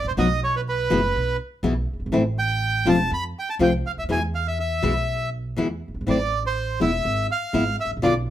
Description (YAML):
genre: tango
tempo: 122 BPM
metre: 4/4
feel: rubato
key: unclear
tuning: A4 = 438 Hz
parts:
  - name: bandoneon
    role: melody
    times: 0.0-8.1 s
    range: B4 to B5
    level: -24 LUFS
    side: right 2 dB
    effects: none
  - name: upright bass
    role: bass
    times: 0.0-8.3 s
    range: E1 to F2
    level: -27 LUFS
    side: right 1 dB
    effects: none
  - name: nylon-string guitar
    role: accompaniment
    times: 0.2-8.1 s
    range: B2 to F#4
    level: -21 LUFS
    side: left 3 dB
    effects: none
room: light reverb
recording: none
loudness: -21 LUFS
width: side -12 dB against mid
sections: 0.0-8.3 A section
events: none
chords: 0.2 B; 1.1 E/B; 2.1 Am; 3.1 F5; 4.1 E; 6.1 Am; 7.1 E/G#